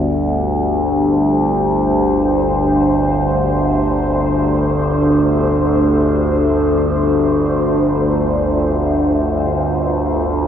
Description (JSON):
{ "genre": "dark ambient drone", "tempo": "free time", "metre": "none", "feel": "none", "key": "unclear", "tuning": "A4 = 440 Hz", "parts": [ { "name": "deep dark ambient pad", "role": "sustained chords", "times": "0.0-10.5 s", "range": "A3 to C5", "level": "-18 LUFS", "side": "right 1 dB", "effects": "chorus, built-in reverb" }, { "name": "overtone-sweeping drone", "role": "drone", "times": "0.0-10.5 s", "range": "G1 to D2", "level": "-16 LUFS", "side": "left 1 dB", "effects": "chorus, built-in reverb" } ], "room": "wet huge ambient reverb, RT60 8.7 s", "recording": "in a vast, echoing space", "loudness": "-13 LUFS", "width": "side -9 dB against mid", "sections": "0.0-10.5 A section", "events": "none", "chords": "0.0 Gsus2", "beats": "free time" }